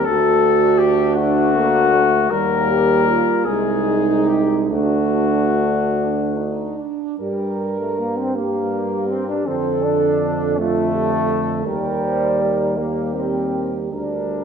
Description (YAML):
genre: classical, hymn-like piece for brass band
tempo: 46-56 BPM (dotted quarters)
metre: 6/8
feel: rubato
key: G minor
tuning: A4 = 440 Hz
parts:
  - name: mellow flugelhorn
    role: melody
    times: 0.0-14.4 s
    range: F#4 to Bb4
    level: -21 LUFS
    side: left 7 dB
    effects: none
  - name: clear French horn section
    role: second line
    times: 0.0-14.4 s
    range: G3 to C5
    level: -22 LUFS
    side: right 6 dB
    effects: none
  - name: clear trombone section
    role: accompaniment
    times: 0.0-14.4 s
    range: G3 to Eb4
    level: -24 LUFS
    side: left 1 dB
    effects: none
  - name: warm trombone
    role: accompaniment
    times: 0.0-14.4 s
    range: D3 to A3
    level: -25 LUFS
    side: right 3 dB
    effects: none
  - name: warm tuba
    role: bass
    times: 0.0-14.4 s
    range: C2 to G2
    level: -25 LUFS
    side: equal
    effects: none
room: moderate scoring stage reverb, RT60 1.6 s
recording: minimal, uncompressed stereo recording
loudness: -16 LUFS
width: side -6 dB against mid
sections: 0.0-7.2 A section; 7.2-14.4 B section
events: none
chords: 0.1 D; 2.3 Eb; 3.5 Ab/C; 4.7 D; 7.2 Gm; 9.5 Dm/F; 11.7 Eb; 13.9 Gm/D